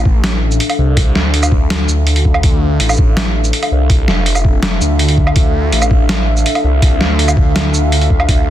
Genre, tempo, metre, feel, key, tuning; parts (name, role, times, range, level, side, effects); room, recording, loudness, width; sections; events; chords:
half-time drum and bass; 164 BPM; 4/4; half-time; D minor; A4 = 441 Hz
dark analog pad; sustained chords; 0.0-8.5 s; D4 to G5; -20 LUFS; equal; chorus, sidechain pumping
phased detuned saw bass; bass; 0.0-8.5 s; F1 to D2; -14 LUFS; equal; phaser
electronic kick drum; drums; 0.1-8.4 s; -12 LUFS; equal
boom bap sampler-style drum kit; drums; 0.2-8.4 s; hi-hat, shaker, snare drum, woodblock; -17 LUFS; right 1 dB
digital ambience; dense, heavily limited modern master; -10 LUFS; side -12 dB against mid
0.0-8.5 A section
0.0 Dmadd9